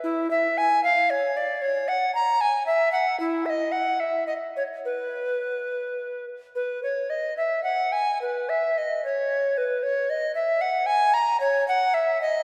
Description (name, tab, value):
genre	classical, baroque-style fantasia for unaccompanied recorder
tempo	68-78 BPM (dotted quarters)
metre	6/8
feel	rubato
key	B major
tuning	A4 = 440 Hz
part	bright tenor recorder	solo	0.0-12.4 s	E4 to A#5	-24 LUFS	equal	none
room	wet church reverb, RT60 3.3 s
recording	heard from further back in the room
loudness	-24 LUFS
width	mono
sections	0.0-6.6 A section; 6.6-12.4 B section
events	none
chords	none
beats	| 0.03 0.82 | 1.60 2.40 | 3.19 4.01 | 4.86 5.71 | 6.57 7.37 | 8.22 9.04 | 9.84 10.63 | 11.42 12.20